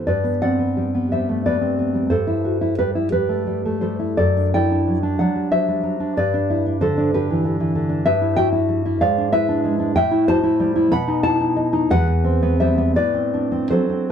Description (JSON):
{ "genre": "romantic piece for solo classical guitar", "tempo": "52-65 BPM (dotted quarters)", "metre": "6/8", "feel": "rubato", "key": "G major, E minor from 8.1 s", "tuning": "A4 = 439 Hz", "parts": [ { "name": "nylon-string guitar", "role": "solo", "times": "0.0-14.1 s", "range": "E2 to B5", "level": "-17 LUFS", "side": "equal", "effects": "none" } ], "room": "light reverb", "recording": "dark, warm production", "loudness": "-17 LUFS", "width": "side -8 dB against mid", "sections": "0.1-14.1 A section", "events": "none", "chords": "0.1 G; 2.1 Am7/G; 4.2 D7/F#; 6.2 G; 8.1 Em/G; 9.0 E7/G#; 10.0 Am7; 10.9 B7; 11.9 Em; 13.0 F#dim/A" }